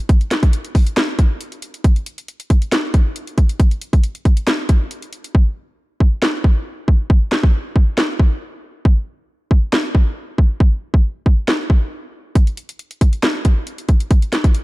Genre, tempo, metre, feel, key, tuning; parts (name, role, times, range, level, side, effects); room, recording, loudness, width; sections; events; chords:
hip hop; 137 BPM; 4/4; half-time
trap drum kit; drums; 0.1-14.6 s; handclaps, hi-hat, kick drum, snare drum; -14 LUFS; equal; overdrive
digital ambience; dark, warm production; -14 LUFS; side -20 dB against mid
0.0-5.3 A section; 5.3-14.6 B section
hi-hats muted 5.3-12.4